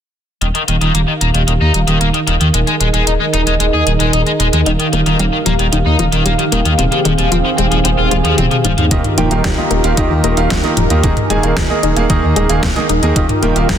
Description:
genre	synthwave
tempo	113 BPM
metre	4/4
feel	straight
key	Eb major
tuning	A4 = 440 Hz
part	warm analog pad	sustained chords	0.4-13.8 s	Eb3 to F5	-18 LUFS	right 2 dB	chorus, sidechain pumping
part	biting overdriven guitar	riff	0.4-8.8 s	Eb3 to Ab4	-18 LUFS	left 3 dB	wide subtle chorus, low-pass filter, ping-pong delay
part	dark detuned saw bass	bass	0.4-13.8 s	Eb1 to Eb2	-16 LUFS	equal	tube saturation, sidechain pumping
part	pop drum kit	drums	0.4-13.8 s	hi-hat, snare drum, toms	-19 LUFS	equal	overdrive
part	analog pluck	arpeggios	4.7-13.8 s	C3 to Eb4	-21 LUFS	left 5 dB	chorus, ping-pong delay
part	clear grand piano	stabs	8.9-13.6 s	Eb3 to Ab5	-18 LUFS	right 3 dB	ping-pong delay
part	electronic kick drum	drums	8.9-13.8 s	none	-18 LUFS	equal	overdrive
room	light reverb, digital ambience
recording	dense, heavily limited modern master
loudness	-11 LUFS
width	side -9 dB against mid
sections	0.4-8.9 A section; 8.9-13.8 B section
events	filter sweep on analog synth pad 0.4-8.9; drum fill 8.1-8.9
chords	0.4 Ebadd9; 2.5 Absus2/Eb; 4.7 Ebadd9; 6.8 Fm7/Eb; 8.9 Ebadd9; 11.0 Absus2/Eb; 13.2 Ebadd9

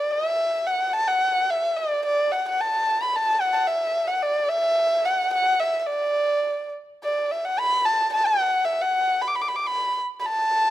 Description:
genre	chinese traditional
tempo	110 BPM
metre	2/4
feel	rubato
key	D gong mode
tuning	A4 = 441 Hz
part	dark erhu	solo	0.0-10.7 s	D5 to D6	-21 LUFS	equal	none
room	light reverb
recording	close, detailed microphones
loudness	-21 LUFS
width	side -13 dB against mid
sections	0.0-7.0 A section; 7.0-10.7 B section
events	none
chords	none

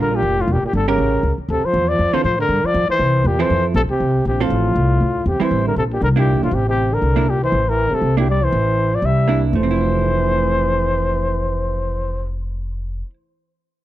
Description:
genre	jazz, small-group swing and bop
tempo	238 BPM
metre	4/4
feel	swing 58% on 8ths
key	F major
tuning	A4 = 440 Hz
part	breathy trumpet	melody	0.0-12.3 s	F4 to E5	-20 LUFS	left 2 dB	none
part	growling trombone	second line	0.0-12.3 s	A2 to G3	-24 LUFS	right 4 dB	none
part	vintage hollow-body jazz guitar	accompaniment	0.0-13.1 s	D3 to Bb4	-23 LUFS	right 8 dB	none
part	upright bass	bass	0.0-13.0 s	E1 to A2	-19 LUFS	equal	none
room	studio ambience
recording	dry, close 1970s-style studio recording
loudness	-15 LUFS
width	side -14 dB against mid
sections	0.0-5.5 A section; 5.5-9.5 B section; 9.5-11.5 C section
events	none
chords	0.5 Edim; 1.0 A7b9; 1.5 Dm7; 2.5 G5; 3.0 C6; 3.5 Fmaj7; 5.5 Am7; 6.0 C9; 6.5 Am7; 7.0 C9; 7.5 A5; 8.0 C9; 8.5 Am; 9.0 C9; 9.5 Fmaj7

